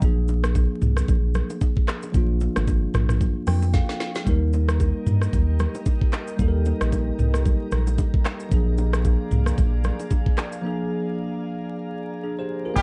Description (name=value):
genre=afrobeats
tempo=113 BPM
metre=4/4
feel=swing 58% on 16ths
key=Eb major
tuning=A4 = 443 Hz
part: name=bell-like tine electric piano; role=accompaniment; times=0.0-12.8 s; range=F3 to G5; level=-31 LUFS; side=equal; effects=lush chorus
part: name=round analog bass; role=bass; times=0.0-12.8 s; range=Ab1 to G2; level=-24 LUFS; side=equal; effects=none
part: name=afro-pop drum kit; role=drums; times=0.0-12.8 s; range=crash cymbal, handclaps, hi-hat, kick drum, rim click, shaker, snare drum, toms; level=-25 LUFS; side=equal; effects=none
part: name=congas and bongos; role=percussion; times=0.0-10.5 s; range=none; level=-37 LUFS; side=equal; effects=none
part: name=glassy FM pad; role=sustained chords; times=4.6-12.8 s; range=G4 to Bb5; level=-39 LUFS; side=equal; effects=ensemble chorus, built-in reverb
part: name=clear horn section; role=second line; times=12.8 s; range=G3 to G4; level=-23 LUFS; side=equal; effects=none
room=little or no reverb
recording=dark, warm production, vinyl crackle, nothing above 11.0 kHz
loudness=-23 LUFS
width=mono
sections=0.0-4.3 A section; 4.3-12.8 B section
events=tine electric piano fill 3.2-4.3; drum fill 3.7-4.3; break 10.6-12.8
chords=0.0 Bb7; 4.3 Eb; 8.5 Bb7